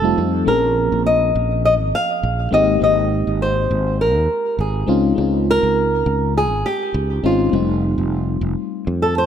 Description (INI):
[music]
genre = sunset chillout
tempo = 102 BPM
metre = 4/4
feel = swing 54% on 16ths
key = unclear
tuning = A4 = 440 Hz
[part]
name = flamenco guitar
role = melody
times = 0.0-9.3 s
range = F4 to F5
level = -18 LUFS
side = equal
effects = tape echo
[part]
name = mellow FM electric piano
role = accompaniment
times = 0.0-9.3 s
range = F3 to Ab4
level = -21 LUFS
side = moving between left 7 dB and right 3 dB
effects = chorus, auto-pan, tape echo
[part]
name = sustaining fretless electric bass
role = bass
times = 0.0-9.3 s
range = F1 to F2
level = -21 LUFS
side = right 1 dB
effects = none
[sound]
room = light reverb, small room ambience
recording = none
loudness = -16 LUFS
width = side -8 dB against mid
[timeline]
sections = 0.0-9.3 A section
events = none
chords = 0.5 Bbm7; 2.5 Abmaj7; 4.9 Dbmaj9; 7.5 F7